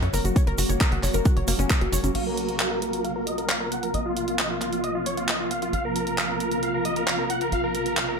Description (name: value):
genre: uplifting trance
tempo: 134 BPM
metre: 4/4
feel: straight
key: Bb minor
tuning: A4 = 440 Hz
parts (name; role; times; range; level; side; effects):
- wide unison pluck; arpeggios; 0.0-2.1 s; Bb3 to Db5; -30 LUFS; left 4 dB; sidechain pumping, tape echo
- tight sequencer bass; bass; 0.0-8.2 s; Gb1 to Gb2; -30 LUFS; equal; sidechain pumping
- house drum kit; drums; 0.0-8.1 s; crash cymbal, handclaps, hi-hat; -28 LUFS; right 1 dB; none
- egg shaker; percussion; 0.1-2.1 s; none; -34 LUFS; right 7 dB; none
- electronic kick drum; drums; 0.4-1.8 s; none; -21 LUFS; equal; none
- big supersaw lead; melody; 2.2-8.2 s; F4 to Gb5; -28 LUFS; right 1 dB; sidechain pumping, low-pass filter, tape echo
room: light reverb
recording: none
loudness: -22 LUFS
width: side -5 dB against mid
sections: 0.0-2.2 A section; 2.2-8.2 B section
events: filter sweep on supersaw synth 2.2-8.2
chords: 0.0 Gb; 2.2 Bbsus2